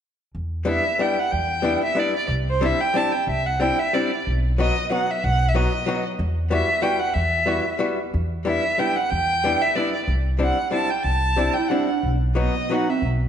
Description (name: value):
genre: musette waltz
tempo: 185 BPM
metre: 3/4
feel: rubato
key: E minor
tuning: A4 = 440 Hz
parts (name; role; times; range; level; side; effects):
- upright bass; bass; 0.3-13.3 s; B1 to E2; -24 LUFS; equal; none
- warm violin; melody; 0.7-13.0 s; C5 to A5; -23 LUFS; right 1 dB; none
- archtop guitar, miked and amplified; accompaniment; 0.7-12.9 s; F#3 to F#4; -24 LUFS; left 2 dB; none
- mellow clarinet; second line; 11.6-13.0 s; B3 to E4; -25 LUFS; right 5 dB; slapback echo
room: moderate recital hall reverb, RT60 1.8 s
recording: nothing above 10.6 kHz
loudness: -19 LUFS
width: side -8 dB against mid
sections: 0.3-8.1 A section; 8.1-13.3 A section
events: none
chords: 0.3 Em7; 2.3 Cadd9; 4.2 B; 6.2 Emadd9; 8.1 Em7; 10.1 Cadd9; 12.0 B